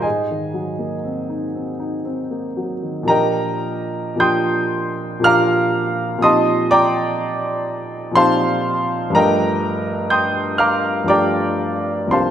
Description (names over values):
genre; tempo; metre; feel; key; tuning
classical, impressionist solo piano; 52-64 BPM; 3/4; rubato; Bb major; A4 = 439 Hz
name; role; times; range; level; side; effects
clear grand piano; solo; 0.0-12.3 s; C2 to G6; -16 LUFS; equal; none
room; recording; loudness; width
moderate scoring stage reverb, RT60 1.9 s; none; -16 LUFS; side -10 dB against mid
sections
0.0-3.1 A section; 3.1-12.3 B section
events
none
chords
0.0 Ab9; 3.1 Bb6; 6.2 Cm11/Bb; 9.2 Gm9